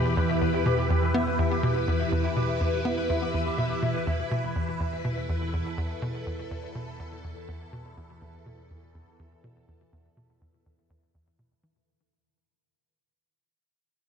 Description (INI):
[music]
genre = ambient, sequencer-driven space music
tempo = 123 BPM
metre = 4/4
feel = straight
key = E minor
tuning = A4 = 442 Hz
[part]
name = phased string machine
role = sustained chords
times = 0.0-11.9 s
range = E3 to B4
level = -30 LUFS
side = equal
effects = ensemble chorus, phaser
[part]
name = tight sequencer bass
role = riff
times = 0.0-11.8 s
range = E2 to B3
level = -29 LUFS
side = equal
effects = wide subtle chorus, vintage 12-bit sampler grit, ping-pong delay
[part]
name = analog drone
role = bass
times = 0.0-11.8 s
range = E2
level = -37 LUFS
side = equal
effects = chorus
[part]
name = mellow electric guitar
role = arpeggios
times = 0.2-4.0 s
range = E4 to E5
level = -33 LUFS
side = left 2 dB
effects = auto-pan, ping-pong delay
[sound]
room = wet plate reverb, RT60 3.1 s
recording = echo-heavy mix, cassette tape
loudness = -25 LUFS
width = side -7 dB against mid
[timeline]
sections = 0.0-11.9 A section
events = fade-out 0.0-11.9; filter sweep on analog synth bass 0.0-11.9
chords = 0.0 Em